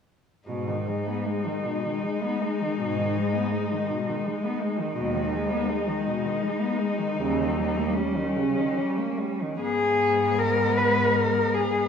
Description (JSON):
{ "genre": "classical, lyrical piece for cello ensemble", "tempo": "67-85 BPM", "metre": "3/4", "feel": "rubato", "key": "G# minor", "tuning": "A4 = 436 Hz", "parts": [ { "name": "rich cello", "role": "melody", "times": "0.5-11.9 s", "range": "C#4 to B4", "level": "-26 LUFS", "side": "left 3 dB", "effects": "none" }, { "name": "warm cello", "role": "second line", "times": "0.5-11.9 s", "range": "B2 to B3", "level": "-30 LUFS", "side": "right 4 dB", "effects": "none" }, { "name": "dark cello", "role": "accompaniment", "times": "0.5-11.9 s", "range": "G3 to G#3", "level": "-30 LUFS", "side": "left 6 dB", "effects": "none" }, { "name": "rich cello", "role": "bass", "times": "0.5-11.9 s", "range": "D#2 to G#2", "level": "-32 LUFS", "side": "right 4 dB", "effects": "none" } ], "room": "moderate recital hall reverb, RT60 1.4 s", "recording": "worn, warbling old tape, cassette tape, warbly pitch drift, studio reverb", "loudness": "-23 LUFS", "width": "side -7 dB against mid", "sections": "0.5-9.6 A section; 9.6-11.9 B section", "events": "none", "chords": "0.5 G#m; 5.0 G#m/D#; 7.2 D#7; 9.6 G#m" }